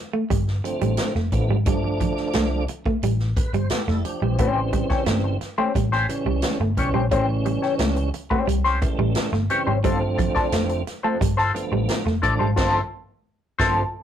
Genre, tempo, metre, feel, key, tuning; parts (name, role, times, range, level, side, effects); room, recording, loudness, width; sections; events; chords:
funk; 88 BPM; 4/4; straight; A4 = 441 Hz
semi-hollow electric guitar; riff; 0.1-12.5 s; F3 to A3; -27 LUFS; right 3 dB
vintage muted picked electric bass; bass; 0.3-13.8 s; F1 to C#2; -24 LUFS; equal
swinging big-band drum kit; drums; 0.3-13.8 s; crash cymbal, hi-hat, kick drum, snare drum; -26 LUFS; equal
tonewheel organ; stabs; 0.6-13.8 s; C#3 to C5; -27 LUFS; right 2 dB; chorus vibrato, fast rotary speaker
semi-hollow electric guitar; accompaniment; 4.4-13.8 s; C#4 to D5; -23 LUFS; left 4 dB; wah
moderate small room reverb, RT60 0.6 s; rough rehearsal-room recording, tube saturation; -20 LUFS; side -9 dB against mid
0.0-14.0 A section
break 0.0-4.4; tonewheel organ fill 3.0-4.4; band accent 12.6-14.0
0.0 G9sus4; 4.4 A7#9; 9.8 G9sus4